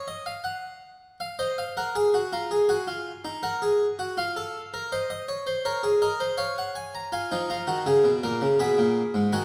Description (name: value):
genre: classical, baroque-style 3-part fugue for harpsichord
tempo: 81 BPM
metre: 4/4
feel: straight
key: Eb minor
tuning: A4 = 440 Hz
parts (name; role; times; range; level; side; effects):
- harpsichord; solo; 0.0-9.4 s; Ab2 to Cb6; -26 LUFS; equal; none
room: moderate recital hall reverb, RT60 1.7 s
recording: none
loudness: -26 LUFS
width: mono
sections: 0.0-9.4 A section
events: none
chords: 0.0 N.C.; 1.2 Bb5; 2.7 Ebm; 4.2 F; 5.7 Bbm; 7.1 Ebm; 8.6 Abm